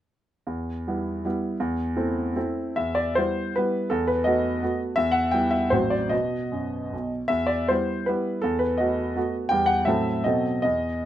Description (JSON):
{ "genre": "classical, romantic triple-time dance for piano with dotted rhythms", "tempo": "134-181 BPM", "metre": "3/4", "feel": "rubato", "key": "E minor", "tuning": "A4 = 440 Hz", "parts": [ { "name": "warm grand piano", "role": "solo", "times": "0.5-11.1 s", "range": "A1 to G5", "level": "-22 LUFS", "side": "equal", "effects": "none" } ], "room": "light reverb", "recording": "close, detailed microphones", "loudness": "-22 LUFS", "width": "side -12 dB against mid", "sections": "0.5-2.8 A section; 2.8-11.1 B section", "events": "none", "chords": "0.5 Em; 1.6 Am/E; 2.8 Em; 3.9 B7/E; 5.0 Em; 5.7 F#dim/A; 6.1 B; 7.3 Em; 8.4 B7/E; 9.5 Em; 9.9 F#dim/A; 10.2 B7b9" }